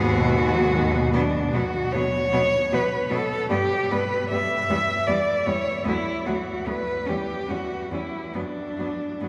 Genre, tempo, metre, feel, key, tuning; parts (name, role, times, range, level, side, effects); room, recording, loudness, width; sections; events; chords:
classical, lyrical piece for cello ensemble; 50 BPM (dotted quarters); 6/8; uneven beats, rubato; B minor; A4 = 440 Hz
rich cello; melody; 0.0-9.3 s; D4 to E5; -26 LUFS; equal
rich cello; second line; 0.0-9.3 s; B3 to C#4; -35 LUFS; equal
rich cello; accompaniment; 0.0-9.3 s; G#2 to G3; -31 LUFS; equal
rich cello; bass; 0.0-9.3 s; D2 to B2; -31 LUFS; equal
wet cathedral reverb, RT60 7.3 s; recorded in a church or concert hall; -24 LUFS; mono
0.0-9.3 A section
0.0 G#m7; 1.1 B5; 3.5 G; 4.7 Em; 5.9 Bm; 7.1 C#dim (rootless); 8.4 Bm/F# (rootless)